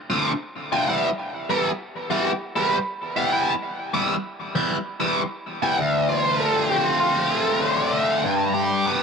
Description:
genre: rock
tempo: 98 BPM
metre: 4/4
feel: straight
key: D dorian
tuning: A4 = 440 Hz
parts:
  - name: overdriven electric guitar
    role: solo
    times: 0.1-9.0 s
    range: D2 to G4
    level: -20 LUFS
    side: equal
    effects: flanger, analog delay
room: moderate spring reverb, RT60 2.2 s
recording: echo-heavy mix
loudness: -20 LUFS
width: side -5 dB against mid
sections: 0.0-5.8 A section; 5.8-9.0 B section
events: none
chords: 0.0 Dm7; 0.9 Em; 5.8 Dm7; 8.2 G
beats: 0.26 | 0.87 1.49 2.10 2.71 | 3.32 3.94 4.55 5.17 | 5.78 6.40 7.01 7.63 | 8.25 8.87

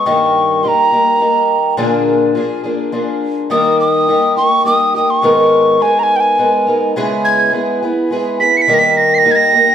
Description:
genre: acoustic folk duo or small band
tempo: 105 BPM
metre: 3/4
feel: straight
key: unclear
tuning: A4 = 440 Hz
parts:
  - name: mellow hollow tin whistle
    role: melody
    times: 0.0-9.7 s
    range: G5 to C#7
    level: -12 LUFS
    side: right 1 dB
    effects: none
  - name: fingerpicked twelve-string acoustic guitar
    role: accompaniment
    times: 0.0-9.7 s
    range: G2 to A#4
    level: -14 LUFS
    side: left 1 dB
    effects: none
room: moderate large studio reverb, RT60 1.3 s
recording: none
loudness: -11 LUFS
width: side -9 dB against mid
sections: 0.0-9.7 A section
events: tin whistle solo 0.0-9.7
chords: 0.1 D#/G; 1.8 A#7; 3.5 D#; 5.2 G#madd9; 7.0 C#m7; 8.7 D#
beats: | 0.07 0.64 1.21 | 1.79 2.36 2.94 | 3.51 4.08 4.66 | 5.23 5.80 6.38 | 6.95 7.52 8.10 | 8.67 9.24

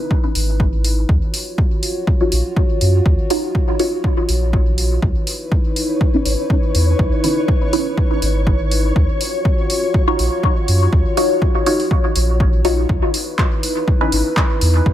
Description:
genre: dub techno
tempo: 122 BPM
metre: 4/4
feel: swing 54% on 16ths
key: unclear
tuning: A4 = 441 Hz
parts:
  - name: dark analog pad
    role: sustained chords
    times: 0.0-14.9 s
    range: D#4 to C#5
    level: -23 LUFS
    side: equal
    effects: chorus, sidechain pumping
  - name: electronic kick drum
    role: drums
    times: 0.1-14.9 s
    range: none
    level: -17 LUFS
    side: equal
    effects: overdrive
  - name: pure sine sub bass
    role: bass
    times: 0.4-14.9 s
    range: G#1 to F#2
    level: -17 LUFS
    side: equal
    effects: sidechain pumping
  - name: deep house drum kit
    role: drums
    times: 0.4-14.7 s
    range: handclaps, hi-hat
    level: -24 LUFS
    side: equal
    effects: overdrive, dub echo
  - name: filtered dub chord stab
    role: stabs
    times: 2.2-14.2 s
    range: C#4 to C#5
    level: -22 LUFS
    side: left 1 dB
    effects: phaser, sidechain pumping, dub echo
  - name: flickering grainy texture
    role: texture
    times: 5.8-12.9 s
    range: C#5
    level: -28 LUFS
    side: left 2 dB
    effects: built-in reverb, sidechain pumping
room: light reverb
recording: none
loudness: -14 LUFS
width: side -12 dB against mid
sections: 0.0-12.9 A section; 12.9-14.9 A section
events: filter sweep on synth stab 0.0-12.9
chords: 0.0 C#m9 (rootless); 1.1 D#m9; 5.0 C#m9; 9.0 D#m9; 12.9 C#m9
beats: 0.11 0.60 | 1.09 1.58 2.07 2.57 | 3.06 3.55 4.04 4.53 | 5.03 5.52 6.01 6.50 | 6.99 7.48 7.98 8.47 | 8.96 9.45 9.94 10.44 | 10.93 11.42 11.91 12.40 | 12.89 13.39 13.88 14.37 | 14.86

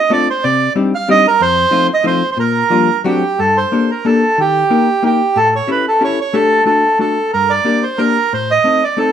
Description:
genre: musette waltz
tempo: 183 BPM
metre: 3/4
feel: rubato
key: Bb major, G harmonic minor from 3.4 s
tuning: A4 = 441 Hz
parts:
  - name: bandoneon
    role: melody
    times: 0.0-9.1 s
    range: G4 to F5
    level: -13 LUFS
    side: right 3 dB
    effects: plate reverb
  - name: hollow-body jazz guitar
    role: accompaniment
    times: 0.1-9.1 s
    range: F2 to Bb4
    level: -16 LUFS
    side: left 4 dB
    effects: none
room: moderate studio reverb, RT60 0.6 s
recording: none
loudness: -11 LUFS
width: side -9 dB against mid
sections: 0.0-3.4 A section; 3.4-9.1 B section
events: none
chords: 0.4 Cmadd9; 1.4 F7; 2.4 Bb6; 3.0 D7; 3.4 Gmadd9; 4.4 Eb; 5.4 A7; 6.3 Dsus4; 6.7 D; 7.3 Gm; 8.3 Adim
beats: 0.10 | 0.42 0.75 1.07 | 1.40 1.72 2.05 | 2.38 2.71 3.05 | 3.39 3.72 4.05 | 4.38 4.71 5.04 | 5.36 5.68 6.01 | 6.33 6.66 7.00 | 7.33 7.67 8.00 | 8.33 8.66 8.98

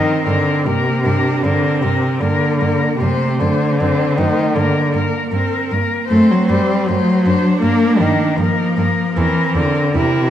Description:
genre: classical, lyrical piece for cello ensemble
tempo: 77 BPM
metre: 4/4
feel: rubato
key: unclear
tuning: A4 = 440 Hz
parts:
  - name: warm cello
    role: melody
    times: 0.0-10.3 s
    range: Bb4 to C5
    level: -21 LUFS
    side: left 4 dB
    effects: none
  - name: rich cello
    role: second line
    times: 0.0-10.3 s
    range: A3 to E4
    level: -22 LUFS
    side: right 6 dB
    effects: none
  - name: dark cello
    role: accompaniment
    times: 0.0-10.3 s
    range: C3 to Bb3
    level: -16 LUFS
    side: left 1 dB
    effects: none
  - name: warm cello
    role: bass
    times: 0.3-10.0 s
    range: E2 to G2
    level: -22 LUFS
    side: right 2 dB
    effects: none
room: wet concert hall reverb, RT60 1.9 s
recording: none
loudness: -14 LUFS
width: side -10 dB against mid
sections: 0.0-10.3 A section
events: none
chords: 0.0 Gm; 3.0 D7/F#; 4.6 Gm; 6.1 F#dim; 7.6 Gm; 9.2 C7/E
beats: 0.66 1.43 2.21 | 3.00 3.80 4.56 5.32 | 6.09 6.87 7.62 8.38 | 9.17 9.95

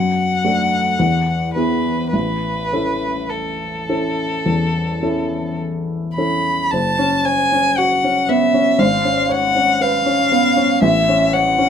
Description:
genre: classical, romantic duo for violin and grand piano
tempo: 51-60 BPM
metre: 4/4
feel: rubato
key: A major, F# minor from 6.7 s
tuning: A4 = 440 Hz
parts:
  - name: rich violin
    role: melody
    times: 0.0-11.7 s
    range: A4 to B5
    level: -18 LUFS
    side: equal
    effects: none
  - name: warm baby grand piano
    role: accompaniment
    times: 0.0-11.7 s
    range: F#1 to C#5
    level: -18 LUFS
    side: left 1 dB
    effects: none
room: light reverb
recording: close, detailed microphones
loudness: -15 LUFS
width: side -8 dB against mid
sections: 0.0-6.7 A section; 6.7-11.7 B section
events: none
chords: 0.0 D/F#; 1.0 E; 2.1 A; 6.7 F#5; 8.8 C#7/G#; 10.8 F#m/A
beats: 0.99 | 2.13 3.30 4.46 5.59 | 6.72 7.78 8.81 9.82 | 10.83

